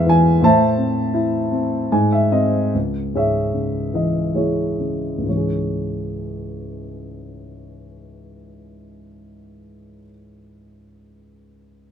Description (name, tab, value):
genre	classical, lyrical solo piano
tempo	59-87 BPM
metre	3/4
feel	rubato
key	C# minor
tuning	A4 = 441 Hz
part	dark grand piano	solo	0.0-11.9 s	C#2 to A5	-17 LUFS	equal	none
room	light reverb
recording	minimal, uncompressed stereo recording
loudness	-17 LUFS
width	side -8 dB against mid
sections	0.0-2.7 A section; 2.7-5.3 B section; 5.3-11.2 C section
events	slowing down 0.4-5.3; grand piano fill 1.5-2.7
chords	0.4 Am; 1.9 G#; 2.7 C#m